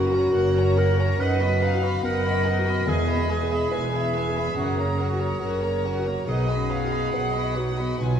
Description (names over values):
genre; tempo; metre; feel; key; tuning
cinematic, emotional film score for orchestra; 70 BPM; 4/4; rubato; unclear; A4 = 444 Hz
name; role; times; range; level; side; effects
warm symphonic violin section; melody; 0.0-8.2 s; B4 to G#5; -34 LUFS; left 5 dB; none
mellow clarinet; second line; 0.0-8.2 s; E#4 to B4; -26 LUFS; equal; none
warm studio violin section; second line; 0.0-8.2 s; A#4 to B5; -32 LUFS; left 1 dB; none
dark concert grand piano; accompaniment; 0.0-8.2 s; B1 to E5; -29 LUFS; left 1 dB; none
warm studio viola section; accompaniment; 0.0-8.2 s; F#3 to B4; -33 LUFS; right 2 dB; none
dark chamber double bass section; bass; 0.0-8.2 s; E1 to B1; -27 LUFS; right 1 dB; none
warm symphonic cello section; bass; 0.0-8.2 s; E2 to B2; -30 LUFS; right 2 dB; none
room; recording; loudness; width
wet scoring stage reverb, RT60 1.5 s; heard from further back in the room; -21 LUFS; side -8 dB against mid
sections
0.0-8.2 A section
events
none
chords
0.0 F#; 1.2 B/F#; 2.9 E; 4.6 F#; 6.3 B